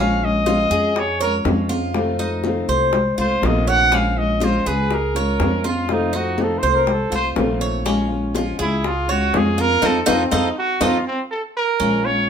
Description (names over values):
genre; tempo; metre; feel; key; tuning
latin, Cuban son and guajira; 122 BPM; 4/4; straight; Bb minor; A4 = 441 Hz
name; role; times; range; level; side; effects
warm trumpet; melody; 0.0-12.3 s; C4 to Gb5; -21 LUFS; right 2 dB; none
fingerpicked steel-string acoustic guitar; accompaniment; 0.0-12.3 s; C3 to F4; -23 LUFS; left 3 dB; none
Cuban tres; arpeggios; 0.0-12.3 s; Db4 to Db5; -23 LUFS; right 1 dB; none
upright bass; bass; 0.0-12.3 s; Bb1 to F2; -24 LUFS; right 1 dB; none
congas; percussion; 0.2-12.3 s; none; -27 LUFS; right 1 dB; none
bongos; percussion; 0.5-10.9 s; none; -26 LUFS; left 6 dB; none
room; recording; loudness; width
moderate large studio reverb, RT60 0.9 s; minimal, uncompressed stereo recording; -17 LUFS; side -7 dB against mid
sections
0.0-11.8 A section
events
trumpet solo 0.0-11.8; band accent 9.8-11.8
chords
0.0 Bbm7; 2.0 F7; 3.9 Bbm7; 5.9 F7; 7.9 Bbm7; 9.8 F7